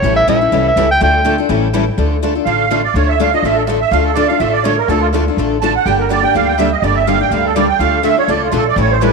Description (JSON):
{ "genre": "acoustic string swing (jazz manouche)", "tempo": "247 BPM", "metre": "4/4", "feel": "swing 55% on 8ths", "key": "D harmonic minor", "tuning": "A4 = 440 Hz", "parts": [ { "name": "clear clarinet", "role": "melody", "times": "0.0-1.4 s", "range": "C#5 to G5", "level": "-14 LUFS", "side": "right 1 dB", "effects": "tape echo" }, { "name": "picked steel-string acoustic guitar", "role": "accompaniment", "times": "0.0-9.1 s", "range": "D3 to A4", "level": "-18 LUFS", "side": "left 13 dB", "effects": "none" }, { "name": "picked steel-string acoustic guitar", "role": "accompaniment", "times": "0.0-9.1 s", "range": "D3 to A4", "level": "-21 LUFS", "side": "right 10 dB", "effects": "none" }, { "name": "upright bass", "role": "bass", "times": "0.0-9.1 s", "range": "G1 to D2", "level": "-18 LUFS", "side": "left 1 dB", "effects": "none" }, { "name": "musette accordion", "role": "second line", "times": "2.5-9.1 s", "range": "F4 to A5", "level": "-15 LUFS", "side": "right 9 dB", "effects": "none" } ], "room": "moderate echo chamber reverb, RT60 2.3 s", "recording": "1960s-style stereo with parts hard left and right", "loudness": "-11 LUFS", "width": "side -4 dB against mid", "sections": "0.0-2.0 A section; 2.0-9.1 A section", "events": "clarinet solo 0.0-2.0; accordion solo 2.0-9.1", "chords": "0.0 A7#9; 1.0 Dm; 1.5 A7; 2.0 Dm; 5.9 Gm; 7.8 Dm", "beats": "| 0.04 0.28 0.52 0.77 | 1.01 1.25 1.49 1.74 | 1.98 2.22 2.46 2.71 | 2.95 3.19 3.43 3.68 | 3.92 4.16 4.41 4.65 | 4.89 5.13 5.38 5.62 | 5.86 6.10 6.35 6.59 | 6.83 7.08 7.32 7.56 | 7.80 8.04 8.29 8.53 | 8.77 9.02" }